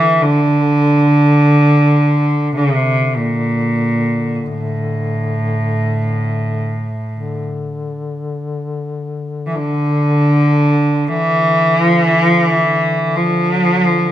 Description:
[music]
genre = caucasian folk, Caucasian lament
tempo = free time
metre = none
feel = none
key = D minor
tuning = A4 = 440 Hz
[part]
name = rich cello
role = melody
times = 0.0-14.1 s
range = A2 to F3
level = -13 LUFS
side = equal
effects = none
[part]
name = dark duduk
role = drone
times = 0.0-14.1 s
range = D3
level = -24 LUFS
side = left 3 dB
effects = none
[sound]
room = moderate recital hall reverb, RT60 1.4 s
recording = close, detailed microphones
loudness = -13 LUFS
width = side -12 dB against mid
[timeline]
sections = 0.0-14.1 A section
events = none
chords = none

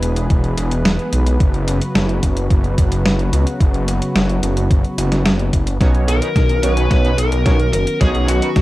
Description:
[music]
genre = synthwave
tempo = 109 BPM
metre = 4/4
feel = straight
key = unclear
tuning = A4 = 440 Hz
[part]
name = warm analog pad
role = sustained chords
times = 0.0-8.6 s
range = C#3 to B4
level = -24 LUFS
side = equal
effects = chorus, sidechain pumping, cassette tape
[part]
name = wide detuned saw bass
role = bass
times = 0.0-8.6 s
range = E1 to C#2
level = -17 LUFS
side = equal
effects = chorus
[part]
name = clean 12-bit digital drum machine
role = drums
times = 0.0-8.6 s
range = hi-hat, snare drum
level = -21 LUFS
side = equal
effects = overdrive, cassette tape
[part]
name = electronic kick drum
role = drums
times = 0.3-8.6 s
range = none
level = -15 LUFS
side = equal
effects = overdrive, cassette tape
[part]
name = analog synth brass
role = stabs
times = 5.8-8.5 s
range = B3 to C#5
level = -23 LUFS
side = right 1 dB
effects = chorus, cassette tape
[part]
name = smooth overdriven lead guitar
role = melody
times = 6.1-8.6 s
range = F#4 to B4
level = -20 LUFS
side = left 1 dB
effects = cassette tape, analog delay
[sound]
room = light reverb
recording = home recording on cassette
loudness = -14 LUFS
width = side -17 dB against mid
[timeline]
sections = 0.0-5.8 A section; 5.8-8.6 B section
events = drum fill 5.8-8.6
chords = 0.0 E; 1.4 F#sus4; 5.8 Badd9

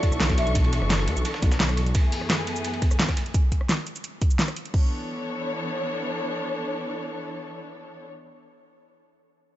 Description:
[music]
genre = liquid drum and bass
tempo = 172 BPM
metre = 4/4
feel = straight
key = B dorian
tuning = A4 = 440 Hz
[part]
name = hollow clarinet-like synth lead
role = melody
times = 0.0-0.5 s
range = D5 to E5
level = -33 LUFS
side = left 1 dB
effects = lush chorus, ping-pong delay
[part]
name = tine electric piano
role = accompaniment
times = 0.0-0.6 s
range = D4 to D5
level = -36 LUFS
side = right 2 dB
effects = medium stereo tremolo, ping-pong delay
[part]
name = dark studio string section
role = sustained chords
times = 0.0-8.1 s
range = F#2 to C#6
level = -30 LUFS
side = left 1 dB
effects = none
[part]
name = dusty soul sampler-style drum kit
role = drums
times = 0.0-3.3 s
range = hi-hat, ride cymbal, snare drum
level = -32 LUFS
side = right 1 dB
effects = high-pass filter on snare, studio reverb, high-pass filter on cymbals, high-pass filter on hats
[part]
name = pop drum kit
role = drums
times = 0.0-4.8 s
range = crash cymbal, kick drum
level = -22 LUFS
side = equal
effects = studio reverb
[part]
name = pop drum kit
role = drums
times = 0.0-4.7 s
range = hi-hat, rim click, shaker, snare drum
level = -28 LUFS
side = equal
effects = studio reverb
[part]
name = dark detuned saw bass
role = bass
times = 0.1-1.9 s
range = F#1 to E2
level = -25 LUFS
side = equal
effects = none
[sound]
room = digital ambience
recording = nothing above 7.9 kHz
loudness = -22 LUFS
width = side -14 dB against mid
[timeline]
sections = 0.0-4.7 A section; 4.7-7.5 B section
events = drop 0.0-4.7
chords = 0.0 Bm11; 1.9 F#m11; 4.7 Bm11

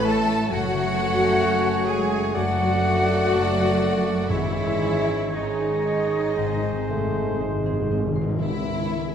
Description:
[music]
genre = classical, slow romantic movement for symphony orchestra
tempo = 57-66 BPM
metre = 4/4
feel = rubato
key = unclear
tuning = A4 = 441 Hz
[part]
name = warm chamber violin section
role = melody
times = 0.0-9.1 s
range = D#5 to A5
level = -33 LUFS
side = left 5 dB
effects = none
[part]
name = clear oboe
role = second line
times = 0.0-8.0 s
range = B#4 to D5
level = -32 LUFS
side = right 1 dB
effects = none
[part]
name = rich studio violin section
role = second line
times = 0.0-9.1 s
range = D#4 to A4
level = -32 LUFS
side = left 3 dB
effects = none
[part]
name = mellow bassoon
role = accompaniment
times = 0.0-8.4 s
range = G#3 to A3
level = -28 LUFS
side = right 2 dB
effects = none
[part]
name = rich studio viola section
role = accompaniment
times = 0.0-7.4 s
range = D#4 to A4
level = -30 LUFS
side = left 1 dB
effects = none
[part]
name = clear trombone section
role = sustained chords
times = 0.0-8.0 s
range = F#2 to A3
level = -31 LUFS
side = right 2 dB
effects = none
[part]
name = warm French horn section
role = sustained chords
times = 0.0-8.1 s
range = B#3 to G#4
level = -29 LUFS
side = left 2 dB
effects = none
[part]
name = concert harp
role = arpeggios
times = 0.0-9.1 s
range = F#2 to D6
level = -30 LUFS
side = left 5 dB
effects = none
[part]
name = rich studio cello section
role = bass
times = 0.0-9.1 s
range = C#2 to A3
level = -30 LUFS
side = right 3 dB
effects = none
[part]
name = rich studio double bass section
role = bass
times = 0.0-9.1 s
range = F#1 to C#2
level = -32 LUFS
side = right 3 dB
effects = none
[part]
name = silver concert flute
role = second line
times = 0.1-7.4 s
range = D#5 to A5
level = -29 LUFS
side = equal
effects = none
[part]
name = timpani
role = percussion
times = 4.3-9.1 s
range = G#2 to C#3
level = -29 LUFS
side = equal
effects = none
[sound]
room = wet scoring stage reverb, RT60 1.9 s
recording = none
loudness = -20 LUFS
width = side -8 dB against mid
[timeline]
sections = 0.0-8.4 A section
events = timpani fill 6.4-8.4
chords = 0.0 A; 0.5 F#m; 2.4 D/F#; 4.3 G#sus4; 6.4 G#; 8.4 C#m

